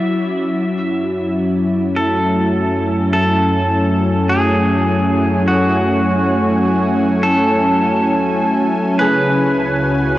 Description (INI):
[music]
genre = ambient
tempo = 51 BPM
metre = 4/4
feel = straight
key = unclear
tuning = A4 = 440 Hz
[part]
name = pedal steel guitar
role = melody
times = 0.0-10.2 s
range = F#4 to E5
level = -19 LUFS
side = equal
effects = diffuse ambient delay
[part]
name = warm analog pad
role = sustained chords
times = 0.0-10.2 s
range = C#3 to G#5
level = -15 LUFS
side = equal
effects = chorus
[part]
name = deep rumbling drone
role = bass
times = 1.0-10.2 s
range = C#2 to F#2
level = -25 LUFS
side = equal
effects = built-in reverb
[part]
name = concert harp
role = arpeggios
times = 9.0-10.2 s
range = G#4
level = -22 LUFS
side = right 1 dB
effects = diffuse ambient delay
[sound]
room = wet huge ambient reverb, RT60 7.7 s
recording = worn, warbling old tape, cassette tape, warbly pitch drift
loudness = -13 LUFS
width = side -15 dB against mid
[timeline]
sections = 0.0-10.2 A section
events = none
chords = 0.0 F#m7; 9.0 C#7sus4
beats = 0.79 1.96 3.14 | 4.31 5.49 6.67 7.84 | 9.02